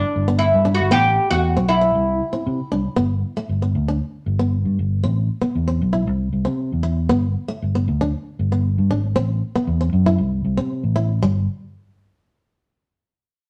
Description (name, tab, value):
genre	highlife guitar band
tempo	116 BPM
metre	4/4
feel	straight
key	G major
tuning	A4 = 440 Hz
part	oud	melody	0.0-2.7 s	D4 to G4	-21 LUFS	equal	none
part	fingered electric bass	bass	0.2-11.5 s	G1 to C3	-22 LUFS	equal	none
part	picked plugged-in swing-style acoustic guitar	accompaniment	0.3-11.4 s	G3 to E4	-26 LUFS	equal	none
room	moderate studio reverb, RT60 0.8 s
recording	none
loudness	-20 LUFS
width	mono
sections	0.0-3.0 A section; 3.0-11.2 B section; 11.2-13.3 C section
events	none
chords	0.0 G; 0.9 Am; 1.9 C; 3.0 G; 5.0 Am; 6.1 C; 7.1 G; 9.2 Am; 10.2 C; 11.2 N.C.